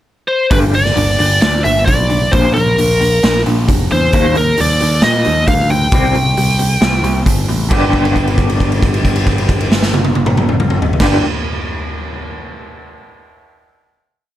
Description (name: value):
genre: quiet-loud alternative rock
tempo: 134 BPM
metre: 4/4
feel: straight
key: unclear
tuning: A4 = 440 Hz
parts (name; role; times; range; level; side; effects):
- biting lead guitar; melody; 0.3-7.2 s; Bb4 to G5; -15 LUFS; left 1 dB; overdrive
- electric guitar through a small old amp; arpeggios; 0.5-11.2 s; G2 to G4; -20 LUFS; left 1 dB; tremolo
- growling picked electric bass; bass; 0.5-11.2 s; F1 to Bb2; -16 LUFS; equal; overdrive
- raw garage drum kit; drums; 0.5-11.1 s; crash cymbal, hi-hat, kick drum, snare drum, toms; -15 LUFS; equal; none
room: small room ambience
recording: none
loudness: -11 LUFS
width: side -13 dB against mid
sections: 0.0-0.5 pickup bar; 0.5-7.7 verse; 7.7-11.3 final chord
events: held note 7.7-11.0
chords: 0.0 N.C.; 0.5 G; 2.3 Bb; 4.1 Eb; 5.9 C5; 7.7 G